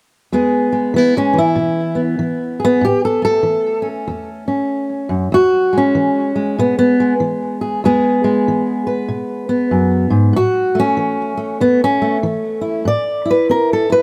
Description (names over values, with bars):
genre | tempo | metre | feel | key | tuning
acoustic country blues, solo or duo | 96 BPM | 4/4 | swing 62% on 8ths | E major | A4 = 440 Hz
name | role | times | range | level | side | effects
fingerpicked steel-string acoustic guitar | solo | 0.3-14.0 s | E2 to D5 | -16 LUFS | equal | none
room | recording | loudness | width
light reverb | none | -16 LUFS | mono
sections
0.3-14.0 A section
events
steel-string acoustic guitar solo 0.3-14.0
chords
0.3 E; 2.8 A; 5.3 E; 10.3 A; 12.9 Am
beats
| 0.31 0.94 1.56 2.19 | 2.82 3.44 4.07 4.70 | 5.32 5.95 6.58 7.21 | 7.83 8.46 9.09 9.72 | 10.35 10.98 11.61 12.24 | 12.87 13.50